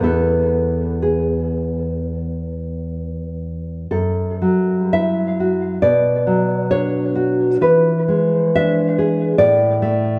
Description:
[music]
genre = romantic piece for solo classical guitar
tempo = 56-73 BPM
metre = 4/4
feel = rubato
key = unclear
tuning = A4 = 440 Hz
[part]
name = nylon-string guitar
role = solo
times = 0.0-10.2 s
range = E2 to E5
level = -18 LUFS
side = equal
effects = tape echo
[sound]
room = moderate recital hall reverb, RT60 1.8 s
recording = none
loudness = -18 LUFS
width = mono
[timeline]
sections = 0.0-10.2 A section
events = none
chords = 0.0 E; 3.9 F#m7; 5.8 Bm; 7.6 E7; 9.4 N.C.

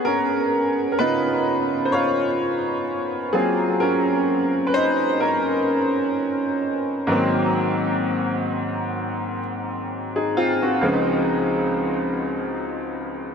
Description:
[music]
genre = R&B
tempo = 64 BPM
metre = 4/4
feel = swing 54% on 16ths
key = unclear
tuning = A4 = 441 Hz
[part]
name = clear baby grand piano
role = solo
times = 0.0-13.3 s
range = Db2 to Db5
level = -20 LUFS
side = equal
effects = analog chorus, tape echo
[sound]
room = wet huge ambient reverb, RT60 7.8 s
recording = dreamy mix soaked in reverb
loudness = -20 LUFS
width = side -6 dB against mid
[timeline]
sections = 0.0-7.1 A section; 7.1-13.3 B section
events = grand piano solo 0.0-7.1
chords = 0.0 Db13; 3.3 Gbmaj7#11; 7.1 Ab7; 10.8 Dbmaj7

